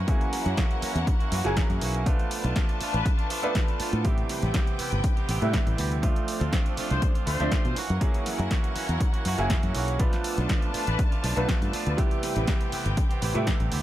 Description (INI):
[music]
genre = filtered disco house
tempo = 121 BPM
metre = 4/4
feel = straight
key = A minor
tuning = A4 = 439 Hz
[part]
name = rich studio string section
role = sustained chords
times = 0.0-13.8 s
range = D4 to A5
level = -35 LUFS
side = left 5 dB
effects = vintage 12-bit sampler grit, sidechain pumping
[part]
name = direct-recorded clean electric guitar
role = riff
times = 0.0-13.8 s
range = E3 to G4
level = -35 LUFS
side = right 6 dB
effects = vintage 12-bit sampler grit, sidechain pumping
[part]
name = fingered electric bass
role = bass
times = 0.0-13.8 s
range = F#1 to B2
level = -27 LUFS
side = equal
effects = sidechain pumping
[part]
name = clear concert grand piano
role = accompaniment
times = 0.1-13.8 s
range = C3 to E5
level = -32 LUFS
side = right 2 dB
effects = phaser, sidechain pumping
[part]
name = electronic kick drum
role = drums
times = 0.1-13.6 s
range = none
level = -25 LUFS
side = equal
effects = overdrive
[part]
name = punchy analog drum machine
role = drums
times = 0.1-13.8 s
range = hi-hat, snare drum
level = -34 LUFS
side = equal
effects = overdrive, sidechain pumping on hats, sidechain pumping on cymbals
[part]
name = clear trumpet section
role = melody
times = 2.9-3.1, 6.9-7.8, 10.9-11.0 s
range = B4 to C5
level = -36 LUFS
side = left 4 dB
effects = sidechain pumping, digital delay
[sound]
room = little or no reverb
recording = none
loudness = -23 LUFS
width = side -13 dB against mid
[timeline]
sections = 0.0-13.8 A section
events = none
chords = 0.0 F#7; 2.1 Bm7b5; 4.0 Am9; 6.0 Dm7; 7.8 F#7; 10.0 Bm7b5; 12.0 Am9